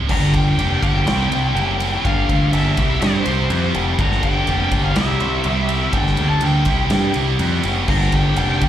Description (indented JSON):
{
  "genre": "quiet-loud alternative rock",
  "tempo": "123 BPM",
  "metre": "4/4",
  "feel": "straight",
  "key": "G dorian",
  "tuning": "A4 = 437 Hz",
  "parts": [
    { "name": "scooped high-gain guitar", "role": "riff", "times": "0.0-8.7 s", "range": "G2 to G4", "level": "-23 LUFS", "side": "right 11 dB", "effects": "distortion, slapback echo" },
    { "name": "high-gain lead guitar", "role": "melody", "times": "0.1-8.7 s", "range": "C5 to Bb5", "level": "-25 LUFS", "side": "left 2 dB", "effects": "distortion, plate reverb, slapback echo" },
    { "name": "thick fuzz guitar", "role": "riff", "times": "0.1-8.7 s", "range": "G2 to G4", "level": "-23 LUFS", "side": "left 9 dB", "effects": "distortion, slapback echo" },
    { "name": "growling picked electric bass", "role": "bass", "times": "0.1-8.7 s", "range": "F1 to G2", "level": "-19 LUFS", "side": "right 1 dB", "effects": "overdrive" },
    { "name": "huge arena drum kit", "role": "drums", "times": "0.1-8.7 s", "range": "crash cymbal, kick drum, ride cymbal, snare drum", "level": "-22 LUFS", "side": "equal", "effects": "none" }
  ],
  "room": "light reverb",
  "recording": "live gig heard through the venue's PA, club reverb",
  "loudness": "-15 LUFS",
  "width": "side -11 dB against mid",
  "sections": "0.1-8.7 A section",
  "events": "none",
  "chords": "0.1 Gm; 1.1 C; 2.0 Gm; 2.8 C; 4.0 Gm; 5.0 C; 5.9 Gm; 6.7 C; 7.9 Gm"
}